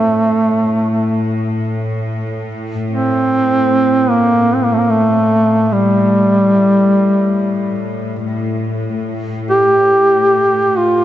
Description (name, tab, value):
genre	caucasian folk, Caucasian lament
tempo	free time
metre	none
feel	none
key	A phrygian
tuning	A4 = 444 Hz
part	warm duduk	melody	0.0-11.0 s	G3 to G4	-12 LUFS	equal	none
part	rich chamber string section	drone	0.0-11.0 s	A2	-20 LUFS	left 2 dB	none
room	wet cathedral reverb, RT60 5.5 s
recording	dark, warm production, nothing above 7.9 kHz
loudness	-12 LUFS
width	side -12 dB against mid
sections	0.0-11.0 A section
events	none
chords	none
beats	free time